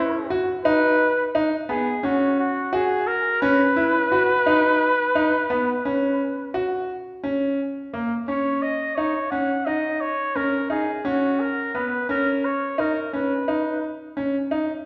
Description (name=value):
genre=contemporary instrumental, chamber music in an uneven meter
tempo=173 BPM (eighths)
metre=11/8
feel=straight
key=unclear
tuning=A4 = 439 Hz
part: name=clear flugelhorn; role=melody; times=0.0-13.8 s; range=F#4 to Gb5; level=-25 LUFS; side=equal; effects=none
part: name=bright concert grand piano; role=arpeggios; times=0.0-14.7 s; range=Bb3 to F#4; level=-25 LUFS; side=equal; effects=none
room=wet recital hall reverb, RT60 1.6 s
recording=recorded in a church or concert hall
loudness=-22 LUFS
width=mono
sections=0.0-7.2 A section; 7.2-14.9 B section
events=none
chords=0.0 Badd9; 7.2 Eb5; 11.0 N.C.; 13.1 Badd9/C#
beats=0.31 0.65 1.00 1.35 1.69 2.04 2.38 2.73 3.08 | 3.42 3.77 4.12 4.46 4.81 5.15 5.50 5.85 6.19 6.54 6.89 | 7.23 7.58 7.93 8.27 8.62 8.97 9.31 9.66 10.01 10.35 10.70 | 11.05 11.39 11.74 12.09 12.43 12.78 13.13 13.47 13.82 14.17 14.51